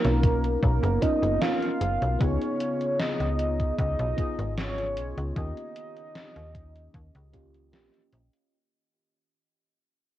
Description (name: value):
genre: vaporwave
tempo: 76 BPM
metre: 4/4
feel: straight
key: unclear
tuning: A4 = 441 Hz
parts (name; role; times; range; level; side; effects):
- warm velvety synth lead; melody; 0.0-7.7 s; A#4 to E#5; -30 LUFS; right 1 dB; chorus, tremolo, tape echo
- mellow FM electric piano; accompaniment; 0.0-8.5 s; A#3 to A#4; -32 LUFS; equal; phaser, lush chorus, cassette tape
- warbly tape-like pad; sustained chords; 0.0-8.5 s; C#3 to G4; -36 LUFS; equal; chorus, built-in reverb, vintage 12-bit sampler grit, cassette tape
- slap-like FM bass; bass; 0.0-8.3 s; F#1 to D#2; -27 LUFS; equal; tube saturation
- gated 80s digital drum machine; drums; 0.0-8.5 s; hi-hat, snare drum; -34 LUFS; equal; gated reverb, gated reverb snare, cassette tape
- electronic kick drum; drums; 0.2-7.5 s; none; -27 LUFS; equal; cassette tape
room: light reverb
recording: home recording on cassette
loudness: -24 LUFS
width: side -13 dB against mid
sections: 0.0-8.5 A section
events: fade-out 0.1-8.5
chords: 0.0 Bmaj9#11; 2.2 C#7; 5.4 D#9